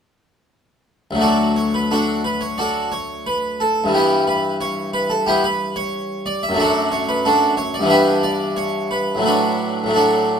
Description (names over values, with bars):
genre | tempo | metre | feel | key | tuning
classical, baroque-style suite movement for harpsichord | 89 BPM | 4/4 | rubato | D major | A4 = 439 Hz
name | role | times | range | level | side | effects
harpsichord | solo | 1.1-10.4 s | D2 to E5 | -16 LUFS | equal | none
room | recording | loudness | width
moderate recital hall reverb, RT60 1.4 s | close, detailed microphones | -16 LUFS | side -7 dB against mid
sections
1.2-10.4 A section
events
none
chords
1.2 D; 3.9 Em/G; 7.9 Em7/G; 9.2 D/A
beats
| 1.20 1.90 2.57 3.26 | 3.93 4.60 5.27 5.93 | 6.59 7.24 7.89 8.56 | 9.25 9.94